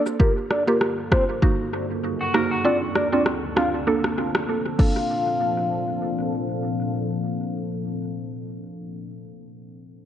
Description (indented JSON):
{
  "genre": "dancehall",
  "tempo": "98 BPM",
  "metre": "4/4",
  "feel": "swing 56% on 16ths",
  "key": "Bb major",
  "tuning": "A4 = 440 Hz",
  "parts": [
    { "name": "mallet-like synth pluck", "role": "accompaniment", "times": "0.0-8.7 s", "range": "Bb3 to A4", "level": "-25 LUFS", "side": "right 3 dB", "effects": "chorus, low-pass filter, analog delay" },
    { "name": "afro-pop drum kit", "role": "drums", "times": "0.1-4.9 s", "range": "crash cymbal, kick drum, rim click, shaker", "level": "-23 LUFS", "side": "equal", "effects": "vintage 12-bit sampler grit, analog delay" },
    { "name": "soft octave-layered synth lead", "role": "melody", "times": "0.2-6.9 s", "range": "Bb4 to F5", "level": "-26 LUFS", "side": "left 2 dB", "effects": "chorus, tremolo, low-pass filter, analog delay" },
    { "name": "deep dark ambient pad", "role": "sustained chords", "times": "0.7-8.3 s", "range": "D2 to A4", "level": "-29 LUFS", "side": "left 2 dB", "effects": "chorus, built-in reverb, sidechain pumping, low-pass filter" },
    { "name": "clean electric guitar", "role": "arpeggios", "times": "2.2-2.8 s", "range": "Gb4 to Bb4", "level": "-30 LUFS", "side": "equal", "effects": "low-pass filter, analog delay" }
  ],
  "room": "moderate spring reverb, RT60 2.5 s",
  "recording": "echo-heavy mix, cassette tape",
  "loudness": "-21 LUFS",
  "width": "side -10 dB against mid",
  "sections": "0.2-5.1 A section; 5.1-7.5 B section",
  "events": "kick muted 3.9-5.1",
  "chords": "0.2 Gm7; 1.4 Gb6; 2.6 Dm7; 3.9 Bbmaj7"
}